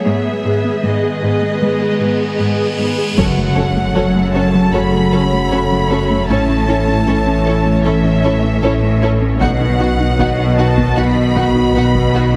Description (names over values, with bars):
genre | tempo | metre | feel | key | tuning
cinematic, hybrid orchestral and electronic film score | 77 BPM | 4/4 | straight | F# dorian | A4 = 438 Hz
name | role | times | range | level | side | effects
rich symphonic violin section | melody | 0.0-12.4 s | D#5 to B5 | -26 LUFS | equal | none
rich symphonic viola section | accompaniment | 0.0-12.2 s | B3 to G#4 | -26 LUFS | equal | none
airy breathy pad | sustained chords | 0.0-12.4 s | D#3 to D#5 | -22 LUFS | equal | chorus
warbly dusty pluck | arpeggios | 0.1-12.4 s | F#3 to B4 | -25 LUFS | equal | none
rich symphonic cello section | bass | 0.1-12.4 s | F#2 to B2 | -22 LUFS | equal | none
cymbal swell and impact | sound effects | 2.1-6.3 s | none | -26 LUFS | equal | none
warm symphonic violin section | second line | 3.2-12.2 s | F#4 to F#5 | -26 LUFS | equal | none
clear trombone section | sustained chords | 3.2-12.4 s | C#3 to A3 | -27 LUFS | equal | none
mellow French horn section | sustained chords | 3.2-12.4 s | B3 to F#4 | -26 LUFS | equal | none
warm sub bass | bass | 3.2-12.4 s | F#1 to B1 | -24 LUFS | equal | none
warm symphonic double bass section | bass | 3.2-12.4 s | F#1 to B1 | -23 LUFS | equal | none
taiko ensemble | drums | 3.2-4.7, 9.4-12.4 s | none | -27 LUFS | equal | none
room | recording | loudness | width
wet concert hall reverb, RT60 2.2 s | heavily compressed radio sound | -15 LUFS | mono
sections
0.0-3.2 A section; 3.2-12.4 B section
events
cymbal swell 2.1-3.2; impact 3.2-6.3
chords
0.1 G#m; 3.2 F#m; 6.3 A; 9.4 B